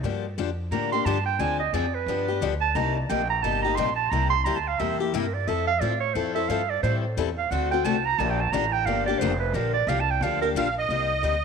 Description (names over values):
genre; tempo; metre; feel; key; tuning
acoustic string swing (jazz manouche); 177 BPM; 4/4; swing 61% on 8ths; G minor; A4 = 438 Hz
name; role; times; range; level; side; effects
picked steel-string acoustic guitar; accompaniment; 0.0-11.3 s; C3 to A4; -28 LUFS; left 12 dB; none
upright bass; bass; 0.0-11.4 s; F1 to A2; -29 LUFS; equal; none
clear clarinet; second line; 0.7-10.5 s; G4 to C6; -26 LUFS; right 9 dB; none
musette accordion; melody; 10.6-11.4 s; Eb5 to F5; -25 LUFS; right 3 dB; none
room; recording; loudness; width
moderate plate reverb, RT60 2.5 s; 1960s-style stereo with parts hard left and right; -22 LUFS; side -6 dB against mid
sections
0.0-10.9 A section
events
clarinet solo 0.0-10.9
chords
0.0 Gm7; 1.4 Dm7b5; 2.1 G7; 2.8 Cm7; 4.1 C7; 5.5 Fmaj7; 6.8 Am7; 7.5 D7; 8.2 Gm7; 10.9 Cm9